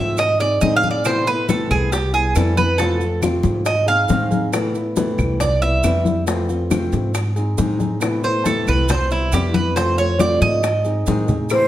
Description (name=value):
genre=latin, Cuban son and guajira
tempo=138 BPM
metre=4/4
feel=straight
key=unclear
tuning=A4 = 440 Hz
part: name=nylon-string guitar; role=accompaniment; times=0.0-11.7 s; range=C3 to G#4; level=-23 LUFS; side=left 2 dB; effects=none
part: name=Cuban tres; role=arpeggios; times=0.0-11.4 s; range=E4 to F5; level=-19 LUFS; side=right 2 dB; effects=none
part: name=upright bass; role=bass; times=0.0-11.7 s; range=C2 to A2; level=-22 LUFS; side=right 1 dB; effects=none
part: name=bongos and cowbell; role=percussion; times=0.2-11.7 s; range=none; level=-28 LUFS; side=left 5 dB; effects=none
part: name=claves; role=percussion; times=0.2-11.7 s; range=none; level=-33 LUFS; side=right 2 dB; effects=none
part: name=congas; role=percussion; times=0.2-11.7 s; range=none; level=-24 LUFS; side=left 3 dB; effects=none
part: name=maracas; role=percussion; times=0.2-11.7 s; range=none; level=-35 LUFS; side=right 7 dB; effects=none
part: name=breathy mellow silver concert flute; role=melody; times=11.5-11.7 s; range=C5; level=-14 LUFS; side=equal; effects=none
room=moderate large studio reverb, RT60 1.3 s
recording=none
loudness=-16 LUFS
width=side -13 dB against mid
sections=0.0-11.5 A section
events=Cuban tres solo 0.0-11.5; drum fill 11.1-11.5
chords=0.2 G#; 1.1 Amadd9; 1.9 Cmaj7; 2.8 Fmaj7; 3.7 G#; 4.5 Amadd9; 5.4 Cmaj7; 6.3 Fmaj7; 7.1 G#; 8.0 Amadd9; 8.9 Cmaj7; 9.8 Fmaj7; 10.6 G#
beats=0.18 0.62 | 1.05 1.49 1.93 2.36 | 2.79 3.23 3.67 4.10 | 4.54 4.97 5.41 5.84 | 6.28 6.71 7.15 7.58 | 8.02 8.46 8.89 9.33 | 9.76 10.20 10.63 11.07 | 11.51